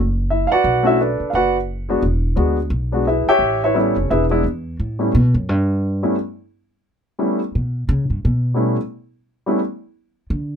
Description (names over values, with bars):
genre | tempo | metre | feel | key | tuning
jazz | 174 BPM | 4/4 | swing 63% on 8ths | A mixolydian | A4 = 438 Hz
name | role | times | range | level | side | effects
upright bass | bass | 0.0-10.6 s | E1 to D3 | -20 LUFS | equal | none
warm grand piano | melody | 0.3-9.6 s | G3 to G5 | -17 LUFS | equal | none
room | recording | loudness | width
little or no reverb | close, detailed microphones | -17 LUFS | side -7 dB against mid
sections
0.0-4.8 A section; 4.8-10.6 B section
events
upright bass solo 4.8-10.6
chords
0.0 Bm7; 2.0 E9; 3.4 A9; 4.1 E; 4.8 A7sus2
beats
0.30 | 0.64 0.99 1.33 1.68 | 2.02 2.37 2.71 3.06 | 3.40 3.75 4.09 4.44 | 4.78 5.13 5.47 5.81 | 6.16 6.50 6.85 7.19 | 7.53 7.88 8.22 8.56 | 8.91 9.25 9.60 9.94 | 10.28